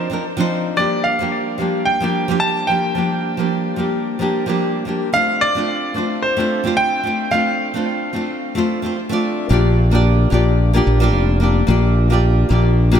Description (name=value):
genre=sunset chillout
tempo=110 BPM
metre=4/4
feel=swing 56% on 16ths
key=Bb major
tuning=A4 = 440 Hz
part: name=bright grand piano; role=melody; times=0.0-9.2 s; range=C5 to A5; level=-20 LUFS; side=right 1 dB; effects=shimmer reverb, analog delay
part: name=nylon-string guitar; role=accompaniment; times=0.0-13.0 s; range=F3 to D5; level=-19 LUFS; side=moving between left 3 dB and right 3 dB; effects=auto-pan, shimmer reverb, tape echo
part: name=modern bright fingered electric bass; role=bass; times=9.5-13.0 s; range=F1 to Bb1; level=-14 LUFS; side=equal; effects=tube saturation
room=moderate echo chamber reverb, RT60 1.8 s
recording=echo-heavy mix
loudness=-15 LUFS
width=side -8 dB against mid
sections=0.0-9.5 A section; 9.5-13.0 B section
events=none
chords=0.0 Cm11; 0.8 Bb6; 5.1 Dm7; 9.5 Bb6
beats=0.23 | 0.78 1.32 1.87 2.42 | 2.96 3.51 4.05 4.60 | 5.14 5.69 6.23 6.78 | 7.33 7.87 8.42 8.96 | 9.51 10.05 10.60 11.14 | 11.69 12.23 12.78